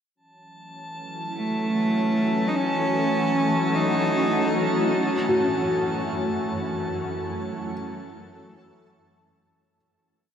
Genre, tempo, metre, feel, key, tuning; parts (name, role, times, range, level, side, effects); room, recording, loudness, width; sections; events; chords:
ambient; free time; F# dorian; A4 = 440 Hz
bowed-like drone; drone; 1.0-9.9 s; F#3 to C#4; -32 LUFS; left 1 dB; built-in reverb, phaser
shimmering ambient pad; sustained chords; 1.2-9.8 s; F#2 to A4; -26 LUFS; equal; chorus, built-in reverb, phaser
drifting glass-harmonics texture; texture; 0.5-9.8 s; A5; -33 LUFS; equal; chorus, built-in reverb
bright cello; melody; 1.4-5.0 s; A3 to D#4; -26 LUFS; equal; tape echo
felt-muted upright piano; arpeggios; 5.3-9.8 s; F#4; -28 LUFS; equal; tape echo
wet shimmer reverb, RT60 7.5 s; dark, warm production; -21 LUFS; side -8 dB against mid
0.2-9.8 A section
filter sweep on ambient pad 0.2-9.8; fade-out 5.0-9.8
0.2 F#m7; 5.0 A/F#